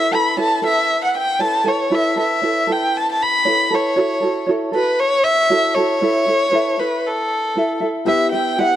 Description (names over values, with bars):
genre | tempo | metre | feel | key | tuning
acoustic pop | 117 BPM | 4/4 | swing 55% on 16ths | A mixolydian | A4 = 441 Hz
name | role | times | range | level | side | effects
dark violin | melody | 0.0-8.8 s | A4 to B5 | -17 LUFS | left 1 dB | plate reverb, ping-pong delay
tenor ukulele | accompaniment | 0.0-8.8 s | E4 to E5 | -20 LUFS | right 2 dB | plate reverb
felt-muted upright piano | accompaniment | 8.1-8.8 s | B3 to E5 | -22 LUFS | left 6 dB | plate reverb
room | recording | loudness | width
moderate studio reverb, RT60 0.6 s | dark, warm production | -15 LUFS | side -12 dB against mid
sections
0.0-8.1 A section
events
none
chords
0.0 Aadd9; 4.0 F#m7; 6.0 Esus4; 8.1 Em